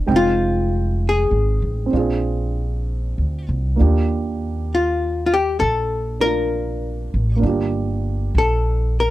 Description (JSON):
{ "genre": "jazz ballad", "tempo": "66 BPM", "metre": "4/4", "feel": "swing 68% on 8ths", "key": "unclear", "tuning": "A4 = 440 Hz", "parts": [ { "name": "archtop guitar, miked and amplified", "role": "melody", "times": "0.0-9.1 s", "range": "D4 to Bb4", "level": "-20 LUFS", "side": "left 3 dB", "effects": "none" }, { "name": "dark upright piano", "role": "accompaniment", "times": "0.0-9.1 s", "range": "Ab3 to G5", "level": "-24 LUFS", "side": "right 4 dB", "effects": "none" }, { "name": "upright bass", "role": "bass", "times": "0.0-9.1 s", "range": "F1 to Eb2", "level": "-20 LUFS", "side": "equal", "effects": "none" } ], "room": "little or no reverb", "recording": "dry, close 1970s-style studio recording", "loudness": "-18 LUFS", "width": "side -15 dB against mid", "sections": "0.0-9.1 A section", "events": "none", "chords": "0.1 Fm7; 1.9 Bb7; 3.8 Ebmaj9; 7.4 Gm7" }